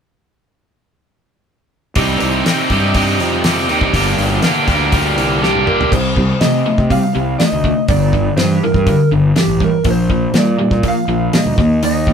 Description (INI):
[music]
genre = classic rock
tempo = 122 BPM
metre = 4/4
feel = straight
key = C dorian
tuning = A4 = 440 Hz
[part]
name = crunchy overdriven guitar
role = riff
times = 2.0-12.1 s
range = G2 to G4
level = -15 LUFS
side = equal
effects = none
[part]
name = fuzz fingered electric bass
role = bass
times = 2.0-12.1 s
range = G1 to C3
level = -19 LUFS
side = equal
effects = overdrive
[part]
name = damped 70s drum kit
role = drums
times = 2.0-12.1 s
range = crash cymbal, hi-hat, kick drum, snare drum, toms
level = -18 LUFS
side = equal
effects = none
[part]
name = electric slide guitar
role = melody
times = 5.4-12.1 s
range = G4 to F5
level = -20 LUFS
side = right 3 dB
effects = none
[sound]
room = moderate studio ambience, RT60 0.5 s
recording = band playing live in one room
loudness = -12 LUFS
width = side -7 dB against mid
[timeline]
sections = 2.0-5.9 A section; 5.9-12.1 B section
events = drum fill 5.4-5.9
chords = 2.0 Cm; 3.9 Gm; 5.9 Cm; 7.9 Gm; 9.9 Bb; 11.6 Eb5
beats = | 1.96 2.46 2.95 3.45 | 3.94 4.43 4.93 5.42 | 5.92 6.41 6.90 7.39 | 7.88 8.38 8.87 9.36 | 9.85 10.35 10.84 11.33 | 11.82